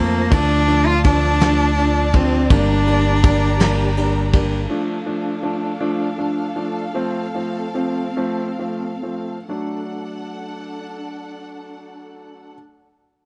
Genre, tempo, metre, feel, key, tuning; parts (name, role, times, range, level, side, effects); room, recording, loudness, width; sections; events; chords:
six-eight pop ballad; 44-55 BPM (dotted quarters); 6/8; straight; D minor; A4 = 440 Hz
rich cello; melody; 0.0-4.3 s; Bb3 to F4; -22 LUFS; equal
clear concert grand piano; accompaniment; 0.0-12.5 s; F3 to D4; -26 LUFS; equal
dark studio string section; sustained chords; 0.0-12.5 s; F3 to Bb5; -30 LUFS; equal
fingered electric bass; bass; 0.0-4.7 s; G1 to F2; -22 LUFS; equal
soft brush drum kit; drums; 0.3-4.5 s; kick drum, ride cymbal, snare drum; -22 LUFS; equal
little or no reverb; nothing above 10.5 kHz; -19 LUFS; mono
0.0-4.7 A section; 4.7-9.5 B section; 9.5-13.3 C section
slowing down 4.7-9.5
0.3 Dm; 2.5 Gm; 4.7 Dm; 7.0 F; 9.5 D